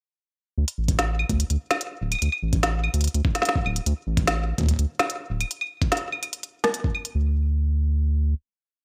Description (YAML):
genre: IDM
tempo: 146 BPM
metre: 4/4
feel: straight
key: unclear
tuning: A4 = 441 Hz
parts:
  - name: round analog bass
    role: bass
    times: 0.6-8.3 s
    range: D1 to D2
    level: -25 LUFS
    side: equal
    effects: none
  - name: organic electronic drum kit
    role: drums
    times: 0.7-7.1 s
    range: claves, hi-hat, snare drum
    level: -28 LUFS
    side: equal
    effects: delay
  - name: electronic kick drum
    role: drums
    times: 0.9-6.9 s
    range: none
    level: -26 LUFS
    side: equal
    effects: overdrive
room: light reverb, digital ambience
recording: bright 1980s-style digital production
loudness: -25 LUFS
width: mono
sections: 0.6-7.2 groove; 7.2-8.8 final note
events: none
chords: none